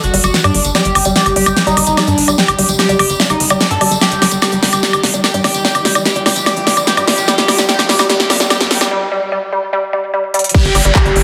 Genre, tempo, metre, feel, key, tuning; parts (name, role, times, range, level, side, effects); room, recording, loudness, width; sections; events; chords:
psychedelic trance; 147 BPM; 4/4; straight; A4 = 438 Hz
overdriven synth lead; melody; 0.0-11.2 s; D4 to A4; -20 LUFS; equal; distortion, chorus, phaser, sidechain pumping, digital delay
evolving wavetable pad; sustained chords; 0.1-8.9 s; G3; -29 LUFS; equal
tight sequencer bass; bass; 0.0-11.2 s; G1 to G2; -23 LUFS; equal
big-room dance drum kit; drums; 0.0-11.2 s; crash cymbal, handclaps, hi-hat, snare drum, woodblock; -16 LUFS; equal; soft clipping on snare
tambourine; percussion; 0.0-8.9 s; -26 LUFS; equal
riser and downlifter; sound effects; 1.2-11.2 s; -29 LUFS; equal
woody wave-folded pluck; riff; 0.1-11.2 s; G3; -21 LUFS; equal; chorus, cassette tape, sidechain pumping, digital delay
electronic kick drum; drums; 10.5-11.0 s; -14 LUFS; equal
wet plate reverb, RT60 1.4 s; dense, heavily limited modern master, high-pass filter; -13 LUFS; mono
0.0-10.5 A section
build-up 0.0-10.5; drum fill 0.0-8.9, 10.3; filter sweep on synth arpeggio sound 0.0-10.5; break 8.9-10.5